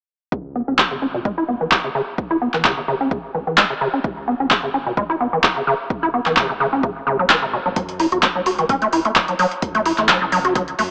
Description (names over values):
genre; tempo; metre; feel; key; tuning
acid house; 129 BPM; 4/4; swing 53% on 16ths; C# minor pentatonic; A4 = 439 Hz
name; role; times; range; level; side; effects
acid bass, square; riff; 0.3-10.8 s; B2 to F#4; -22 LUFS; equal; overdrive, subtle chorus, sidechain pumping, analog delay
round analog bass; bass; 0.3-10.9 s; G#1 to F#2; -38 LUFS; equal; sidechain pumping
electronic kick drum; drums; 0.3-10.7 s; none; -27 LUFS; equal; overdrive
booming analog drum machine; drums; 0.8-10.9 s; handclaps, hi-hat; -21 LUFS; equal; overdrive
room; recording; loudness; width
moderate spring reverb, RT60 2.5 s; dry, gritty hardware recording, small speaker sound; -19 LUFS; mono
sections
0.3-10.9 A section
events
filter sweep on acid bass 0.3-10.9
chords
0.3 C#7(no3); 7.8 F#7(no3)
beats
| 0.32 0.79 1.25 1.72 | 2.18 2.65 3.11 3.58 | 4.04 4.51 4.97 5.44 | 5.91 6.37 6.83 7.30 | 7.76 8.23 8.70 9.16 | 9.62 10.09 10.56